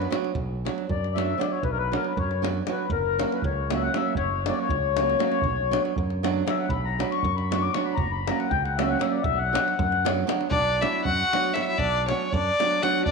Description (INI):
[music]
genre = balkan folk, Balkan wedding band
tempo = 236 BPM (eighths)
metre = 5/8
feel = straight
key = B harmonic minor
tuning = A4 = 440 Hz
[part]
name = warm violin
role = melody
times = 0.0-0.1, 10.5-13.1 s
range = C#5 to F#5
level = -24 LUFS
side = left 1 dB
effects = slapback echo
[part]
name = mellow accordion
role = second line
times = 0.0-13.1 s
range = C#4 to D6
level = -27 LUFS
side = left 8 dB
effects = none
[part]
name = flamenco guitar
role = accompaniment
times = 0.0-13.0 s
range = F#3 to F#4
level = -29 LUFS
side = right 10 dB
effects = none
[part]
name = modern bright fingered electric bass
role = bass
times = 0.0-13.1 s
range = F#1 to F#2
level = -29 LUFS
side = equal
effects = none
[part]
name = davul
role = percussion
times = 0.0-13.1 s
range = none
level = -31 LUFS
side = left 1 dB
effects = none
[sound]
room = wet echo chamber reverb, RT60 1.8 s, small room ambience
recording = 1960s-style stereo with parts hard left and right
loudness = -22 LUFS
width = side -4 dB against mid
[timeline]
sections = 0.3-10.5 A section; 10.5-13.1 B section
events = accordion solo 0.3-10.5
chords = 0.3 Bm; 2.9 F#; 5.4 Bm; 8.0 F#; 9.2 Bm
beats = 0.10 | 0.35 0.60 0.86 1.11 1.37 | 1.62 1.87 2.13 2.38 2.64 | 2.89 3.15 3.40 3.65 3.91 | 4.16 4.42 4.67 4.92 5.18 | 5.43 5.68 5.94 6.19 6.45 | 6.70 6.95 7.21 7.46 7.71 | 7.97 8.22 8.48 8.73 8.98 | 9.24 9.49 9.74 10.00 10.25 | 10.51 10.76 11.02 11.27 11.52 | 11.78 12.03 12.29 12.54 12.80 | 13.05